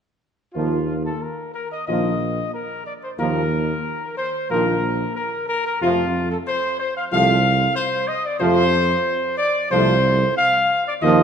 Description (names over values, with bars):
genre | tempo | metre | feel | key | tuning
classical | 92 BPM | 4/4 | straight | unclear | A4 = 440 Hz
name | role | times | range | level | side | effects
mellow trumpet section | melody | 0.5-11.2 s | F4 to F5 | -20 LUFS | left 1 dB | none
bright trombone section | sustained chords | 0.6-11.2 s | C3 to F3 | -25 LUFS | right 4 dB | none
mellow French horn section | sustained chords | 0.6-11.2 s | A3 to F4 | -27 LUFS | left 5 dB | none
mellow tuba | bass | 0.6-11.2 s | Bb1 to F2 | -23 LUFS | right 3 dB | none
room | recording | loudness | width
wet scoring stage reverb, RT60 1.9 s | none | -18 LUFS | side -7 dB against mid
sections
0.6-11.2 A section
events
none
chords
0.6 Ebsus2; 5.8 F